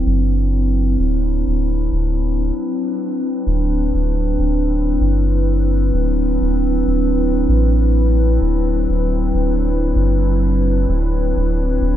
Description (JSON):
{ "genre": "ambient dub", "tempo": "97 BPM", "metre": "4/4", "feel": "swing 55% on 16ths", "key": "D mixolydian", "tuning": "A4 = 441 Hz", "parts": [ { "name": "warbly tape-like pad", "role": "sustained chords", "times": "0.0-12.0 s", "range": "F#3 to B4", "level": "-19 LUFS", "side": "equal", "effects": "chorus, built-in reverb" }, { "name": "soft dub sub bass", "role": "bass", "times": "0.0-12.0 s", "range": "D1 to A1", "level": "-17 LUFS", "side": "equal", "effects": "none" } ], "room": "light reverb", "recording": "none", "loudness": "-15 LUFS", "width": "side -12 dB against mid", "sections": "0.0-12.0 A section", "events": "none", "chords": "0.0 D13", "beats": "0.37 | 0.99 1.61 2.23 2.85 | 3.47 4.08 4.70 5.32 | 5.94 6.56 7.18 7.80 | 8.41 9.03 9.65 10.27 | 10.89 11.51" }